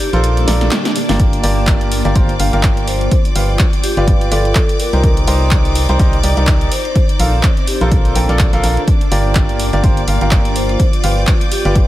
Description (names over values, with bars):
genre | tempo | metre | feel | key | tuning
piano house | 125 BPM | 4/4 | swing 57% on 16ths | G minor | A4 = 440 Hz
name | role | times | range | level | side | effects
vibraphone with medium mallets | melody | 0.0-11.7 s | G4 to C5 | -25 LUFS | left 1 dB | digital delay
rich studio violin section | sustained chords | 0.0-11.9 s | D5 to D6 | -26 LUFS | left 2 dB | sidechain pumping
punchy analog drum machine | drums | 0.0-11.9 s | handclaps, hi-hat, snare drum | -22 LUFS | equal | none
granular cloud pad | texture | 0.0-11.9 s | Bb3 to A5 | -24 LUFS | equal | built-in reverb, sidechain pumping
bright baby grand piano | riff | 0.1-11.9 s | Eb4 to G5 | -20 LUFS | right 1 dB | sidechain pumping, digital delay
organ-like FM bass | bass | 0.1-11.9 s | G1 to C2 | -16 LUFS | equal | sidechain pumping
swell | sound effects | 0.4-1.2 s | none | -27 LUFS | left 3 dB | none
electronic kick drum | drums | 1.2-11.9 s | none | -14 LUFS | equal | none
room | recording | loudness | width
little or no reverb | none | -11 LUFS | side -15 dB against mid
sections
0.0-11.9 A section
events
kick drops out 0.2-1.2; swell 0.4-1.2; drum fill 0.5-1.2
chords
0.0 Gm7; 3.1 G7; 4.8 Cm7; 6.7 Bbmaj7; 8.9 Gm7; 10.8 G7